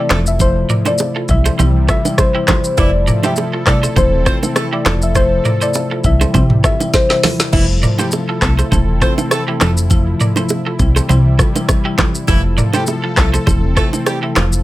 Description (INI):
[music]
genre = afrobeats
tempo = 101 BPM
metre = 4/4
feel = swing 55% on 16ths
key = F major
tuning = A4 = 440 Hz
[part]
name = soft round pluck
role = melody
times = 0.0-7.4 s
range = C5 to E5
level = -19 LUFS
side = left 2 dB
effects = chorus, digital delay, plate reverb
[part]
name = marimba with medium hard mallets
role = accompaniment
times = 0.0-14.6 s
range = C3 to E4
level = -20 LUFS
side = left 2 dB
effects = none
[part]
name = warm analog pad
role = sustained chords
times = 0.0-14.6 s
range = C3 to A4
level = -26 LUFS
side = equal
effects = chorus
[part]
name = electric guitar at the edge of break-up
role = riff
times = 0.0-14.5 s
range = E4 to D5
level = -24 LUFS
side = right 5 dB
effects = none
[part]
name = warm horn section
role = second line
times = 0.1-14.5 s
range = E3 to C5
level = -23 LUFS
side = right 1 dB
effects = plate reverb
[part]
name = plucky analog bass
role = bass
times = 0.1-14.6 s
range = E1 to C2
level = -15 LUFS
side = equal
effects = none
[part]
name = afro-pop drum kit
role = drums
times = 0.1-14.6 s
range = crash cymbal, handclaps, hi-hat, kick drum, rim click, shaker, snare drum, toms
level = -15 LUFS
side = equal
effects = none
[part]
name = bongos and congas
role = percussion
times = 0.1-14.5 s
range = none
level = -22 LUFS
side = right 5 dB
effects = none
[sound]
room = light reverb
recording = none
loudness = -12 LUFS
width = side -16 dB against mid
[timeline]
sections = 0.0-14.6 A section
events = drum fill 6.9-7.5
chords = 0.1 Fmaj7; 1.3 C; 2.8 Fmaj7; 4.0 Am/E; 4.9 Fmaj7; 6.0 C; 7.5 Fmaj7; 8.7 Am/E; 9.6 Fmaj7; 10.8 C; 12.3 Fmaj7; 13.5 Am/E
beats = | 0.40 1.00 1.59 2.19 | 2.78 3.37 3.97 4.56 | 5.16 5.75 6.34 6.94 | 7.53 8.12 8.72 9.31 | 9.91 10.50 11.10 11.69 | 12.28 12.88 13.47 14.07